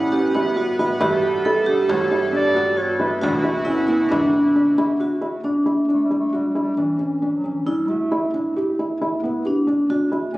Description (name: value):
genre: contemporary instrumental, chamber music in an uneven meter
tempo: 135 BPM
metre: 5/4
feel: straight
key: unclear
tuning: A4 = 435 Hz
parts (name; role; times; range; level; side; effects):
- vibraphone with medium mallets; second line; 0.0-10.4 s; D4 to A4; -20 LUFS; right 1 dB; none
- chorused pulse-width pad; sustained chords; 0.0-5.4 s; D2 to F#5; -28 LUFS; equal; none
- felt-muted upright piano; arpeggios; 0.0-10.4 s; B3 to G4; -24 LUFS; equal; none
- frame drum; percussion; 0.1-5.0 s; none; -32 LUFS; right 1 dB; none
- mellow clarinet; melody; 1.0-10.4 s; E3 to D5; -27 LUFS; equal; none
room: moderate concert hall reverb, RT60 2.0 s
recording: recorded on a phone in the room, club reverb, compression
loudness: -18 LUFS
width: side -17 dB against mid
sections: 0.0-5.4 A section; 5.4-10.4 B section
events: none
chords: 0.0 A13; 1.0 Gmaj9; 3.2 D69; 5.4 Em13; 7.7 Em7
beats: 0.12 0.57 | 1.01 1.45 1.90 2.34 2.78 | 3.23 3.67 4.11 4.56 5.00 | 5.45 5.89 6.33 6.78 7.22 | 7.67 8.12 8.56 9.01 9.45 | 9.90 10.35